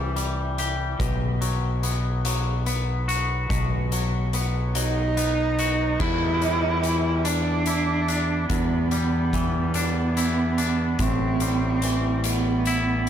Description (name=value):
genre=post-rock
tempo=48 BPM (dotted quarters)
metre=6/8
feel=straight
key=E minor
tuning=A4 = 439 Hz
part: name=twangy electric guitar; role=arpeggios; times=0.0-13.1 s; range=E2 to G4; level=-28 LUFS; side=left 3 dB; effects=digital delay
part: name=growling fingered electric bass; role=bass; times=0.0-13.1 s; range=A1 to E2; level=-25 LUFS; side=equal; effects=overdrive
part: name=oversized low-tuned drum kit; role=drums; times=0.2-13.1 s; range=crash cymbal, hi-hat, kick drum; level=-30 LUFS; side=left 1 dB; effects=none
part: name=warm cello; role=melody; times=4.8-13.1 s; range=B3 to E4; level=-25 LUFS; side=right 4 dB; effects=digital delay
room=light reverb, small room ambience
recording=none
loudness=-21 LUFS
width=side -9 dB against mid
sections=0.0-6.0 A section; 6.0-13.1 B section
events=none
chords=0.0 C; 1.0 B; 6.0 Em7; 11.0 Am7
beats=| 1.00 2.25 | 3.50 4.75 | 6.00 7.25 | 8.50 9.75 | 10.99 12.24